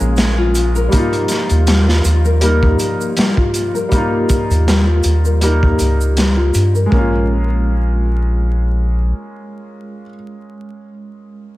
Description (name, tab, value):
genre	trip hop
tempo	80 BPM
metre	4/4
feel	swing 55% on 16ths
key	Bb dorian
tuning	A4 = 440 Hz
part	felt-muted upright piano	accompaniment	0.0-11.6 s	G3 to Bb4	-21 LUFS	equal	harmonic tremolo, tape echo
part	nylon-string guitar	arpeggios	0.0-7.3 s	G3 to Bb4	-21 LUFS	left 2 dB	vintage 12-bit sampler grit, low-pass filter, ping-pong delay
part	round analog bass	bass	0.0-9.1 s	Bb1 to G2	-14 LUFS	equal	none
part	tube shaker	percussion	0.0-6.9 s	none	-32 LUFS	right 5 dB	none
part	wind-like tuned noise texture	texture	0.0-6.9 s	F3 to F4	-30 LUFS	equal	none
part	crunchy breakbeat drum kit	drums	0.2-7.1 s	hi-hat, kick drum, snare drum	-18 LUFS	equal	none
room	light reverb, small room ambience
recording	vinyl crackle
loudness	-12 LUFS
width	side -17 dB against mid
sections	0.0-6.9 A section; 6.9-9.9 B section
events	filter sweep on nylon-string guitar 0.0-6.9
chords	0.0 Bbm7; 0.9 Ebadd9; 6.9 Bbm7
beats	0.16 | 0.91 1.66 2.41 3.16 | 3.91 4.66 5.41 6.16 | 6.91 7.66 8.41 9.16